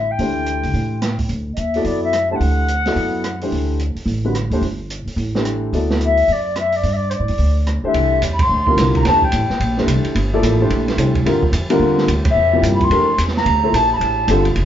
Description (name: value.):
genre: modal jazz.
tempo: 217 BPM.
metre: 4/4.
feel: swing 62% on 8ths.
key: D mixolydian, C mixolydian from 7.9 s.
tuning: A4 = 438 Hz.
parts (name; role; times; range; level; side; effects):
wooden flute; melody; 0.0-3.4, 6.0-9.8, 12.3-14.4 s; C5 to C6; -18 LUFS; left 2 dB; plate reverb.
upright bass; bass; 0.0-14.7 s; F1 to A2; -19 LUFS; equal; none.
warm upright piano; accompaniment; 0.2-14.5 s; C3 to D5; -20 LUFS; left 1 dB; none.
open jazz drum kit; drums; 0.2-14.6 s; hi-hat, kick drum, ride cymbal, rim click, snare drum; -24 LUFS; right 2 dB; none.
room: wet small room reverb, RT60 0.6 s.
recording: heard from further back in the room, nothing above 7.6 kHz.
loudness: -15 LUFS.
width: side -10 dB against mid.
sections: 0.0-7.9 A section; 7.9-14.7 B section.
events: band accent 8.4, 12.2.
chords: 0.0 D9sus4; 1.3 Bm/D; 3.5 D9sus4; 5.7 Bm/D; 6.8 Gsus2; 7.9 C9; 12.4 Dmadd9.